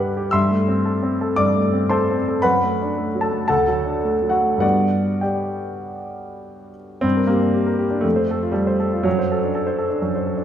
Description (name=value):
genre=classical, romantic character piece for solo piano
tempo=94-127 BPM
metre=4/4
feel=rubato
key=G major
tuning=A4 = 440 Hz
part: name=clear concert grand piano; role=solo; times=0.0-10.4 s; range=D2 to F#6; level=-18 LUFS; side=equal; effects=none
room=wet scoring stage reverb, RT60 1.4 s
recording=recorded in a church or concert hall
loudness=-17 LUFS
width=side -9 dB against mid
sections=0.0-7.0 A section; 7.0-10.4 B section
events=none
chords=0.3 Am7/G; 2.4 D/F#; 3.5 D; 4.6 G; 7.0 Gm; 8.1 F; 9.1 D7/F#